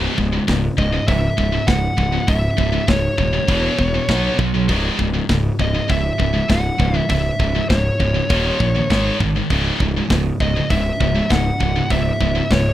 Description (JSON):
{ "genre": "heavy metal", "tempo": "100 BPM", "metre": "4/4", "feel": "straight", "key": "C# minor", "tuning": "A4 = 436 Hz", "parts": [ { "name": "scooped high-gain guitar", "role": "riff", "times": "0.0-12.7 s", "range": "C#2 to B3", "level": "-21 LUFS", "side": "equal", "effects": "distortion" }, { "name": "fuzz fingered electric bass", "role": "bass", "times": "0.0-12.7 s", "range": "C#1 to B1", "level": "-20 LUFS", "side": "equal", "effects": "overdrive" }, { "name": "tight metal drum kit", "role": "drums", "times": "0.2-12.7 s", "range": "hi-hat, kick drum, snare drum", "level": "-21 LUFS", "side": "equal", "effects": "none" }, { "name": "high-gain lead guitar", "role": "melody", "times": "0.8-12.7 s", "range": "C#5 to F#5", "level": "-23 LUFS", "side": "equal", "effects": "distortion, ping-pong delay" } ], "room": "little or no reverb", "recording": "rough home demo mix", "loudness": "-16 LUFS", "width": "side -13 dB against mid", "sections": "0.0-12.7 A section", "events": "none", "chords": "0.0 C#m; 3.5 E5; 4.1 B5; 4.7 C#m; 8.3 D#5; 8.9 G#5; 9.5 C#m" }